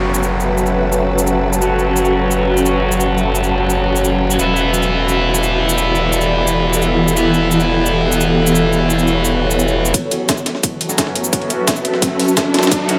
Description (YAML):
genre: dark technical drum and bass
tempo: 173 BPM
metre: 4/4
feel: straight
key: F# phrygian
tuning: A4 = 440 Hz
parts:
  - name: swarming drone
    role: sustained chords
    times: 0.0-13.0 s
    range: E3 to A4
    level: -22 LUFS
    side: equal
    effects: built-in reverb, sidechain pumping
  - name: tight distorted guitar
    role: stabs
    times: 0.0-13.0 s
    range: E3 to F#4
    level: -22 LUFS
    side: equal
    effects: distortion, low-pass filter, delay
  - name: growl bass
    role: bass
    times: 0.0-9.9 s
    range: E1 to F#1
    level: -21 LUFS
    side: equal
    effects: distortion, chorus, overdrive, sidechain pumping
  - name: downlifter and riser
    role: sound effects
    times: 0.0-1.6, 10.6-13.0 s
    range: none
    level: -27 LUFS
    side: equal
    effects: none
  - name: ethereal airy pad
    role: texture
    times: 0.0-13.0 s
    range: E4 to A5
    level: -23 LUFS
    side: equal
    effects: ensemble chorus, built-in reverb, phaser, sidechain pumping
  - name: electronic shaker and hi-hat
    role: drums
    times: 0.1-13.0 s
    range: none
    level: -23 LUFS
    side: equal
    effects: none
  - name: breakbeat sampler-style drum kit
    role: drums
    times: 9.9-13.0 s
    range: hi-hat, ride cymbal, snare drum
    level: -23 LUFS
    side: equal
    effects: high-pass filter on cymbals, high-pass filter on snare, high-pass filter on hats
  - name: electronic kick drum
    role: drums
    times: 9.9-12.8 s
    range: none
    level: -24 LUFS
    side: equal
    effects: high-pass filter on kick
room: moderate digital room reverb, RT60 1.3 s, digital ambience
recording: none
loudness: -15 LUFS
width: mono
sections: 0.0-9.9 A section; 9.9-13.0 B section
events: filter sweep on distorted electric guitar 0.0-9.9, 9.9-13.0; build-up 9.9-13.0; riser 10.6-13.0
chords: 0.0 F#m; 4.4 Em; 9.9 F#m